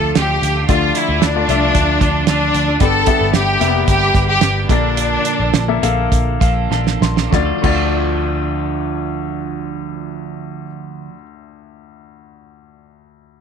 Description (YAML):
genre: piano-driven pop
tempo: 96-113 BPM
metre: 4/4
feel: straight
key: D minor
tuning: A4 = 440 Hz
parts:
  - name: clear studio violin section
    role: melody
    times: 0.0-5.8 s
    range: D4 to A4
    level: -17 LUFS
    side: left 1 dB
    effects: slapback echo
  - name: clear baby grand piano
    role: accompaniment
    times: 0.0-13.4 s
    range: D2 to C6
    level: -22 LUFS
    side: left 12 dB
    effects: none
  - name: twelve-string electric guitar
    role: riff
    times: 0.0-11.3 s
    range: G2 to B4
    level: -24 LUFS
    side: right 13 dB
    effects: none
  - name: vintage muted picked electric bass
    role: bass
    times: 0.0-10.7 s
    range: F1 to D2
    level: -20 LUFS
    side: equal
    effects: none
  - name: damped 70s drum kit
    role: drums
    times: 0.2-7.8 s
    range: crash cymbal, hi-hat, kick drum, snare drum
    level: -18 LUFS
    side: right 3 dB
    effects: none
room: moderate spring reverb, RT60 1.6 s, studio ambience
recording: 1960s-style stereo with parts hard left and right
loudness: -13 LUFS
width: side -7 dB against mid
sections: 0.0-7.3 A section; 7.3-12.3 B section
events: slowing down 2.8-7.3; grand piano fill 6.1-7.3; drum fill 6.7-7.3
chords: 0.0 Dm; 2.8 G; 4.7 Bbmaj7; 7.3 Dm